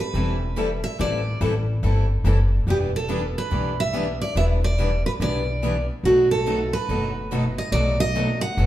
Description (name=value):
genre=acoustic string swing (jazz manouche)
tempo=142 BPM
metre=4/4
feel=swing 63% on 8ths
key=E minor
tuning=A4 = 440 Hz
part: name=picked steel-string acoustic guitar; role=melody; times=0.0-8.7 s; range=F#4 to F#5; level=-24 LUFS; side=right 2 dB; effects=none
part: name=picked steel-string acoustic guitar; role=accompaniment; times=0.1-8.7 s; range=B2 to A4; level=-29 LUFS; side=left 4 dB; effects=none
part: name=picked steel-string acoustic guitar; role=accompaniment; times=0.1-8.7 s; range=B2 to B4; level=-30 LUFS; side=right 1 dB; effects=none
part: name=upright bass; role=bass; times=0.1-8.7 s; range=E1 to B1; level=-23 LUFS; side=equal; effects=none
room=wet large studio reverb, RT60 1.3 s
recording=band playing live in one room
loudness=-20 LUFS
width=side -13 dB against mid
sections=0.0-8.7 A section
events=none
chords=0.0 Am7; 2.7 Em7; 6.0 B7